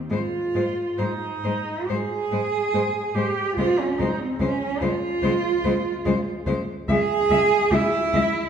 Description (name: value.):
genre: classical, lyrical piece for cello ensemble.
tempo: 65-74 BPM.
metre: 4/4.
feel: rubato.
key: Ab major.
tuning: A4 = 440 Hz.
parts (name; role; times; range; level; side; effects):
warm cello; second line; 0.0-8.5 s; C4 to Ab4; -23 LUFS; right 3 dB; none.
clear cello; melody; 0.1-8.2 s; C5 to Fb5+25c; -31 LUFS; left 5 dB; none.
clear cello; accompaniment; 0.1-8.2 s; Ab3; -28 LUFS; left 2 dB; none.
rich cello; bass; 0.1-8.2 s; Db2 to Ab2; -30 LUFS; equal; none.
room: wet recital hall reverb, RT60 1.5 s.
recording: heard from further back in the room.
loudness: -21 LUFS.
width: side -7 dB against mid.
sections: 0.1-8.5 A section.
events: none.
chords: 0.1 Ab5; 3.6 Dbmaj7.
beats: | 0.11 0.99 1.89 2.74 | 3.58 4.40 5.23 6.06 | 6.89 7.71.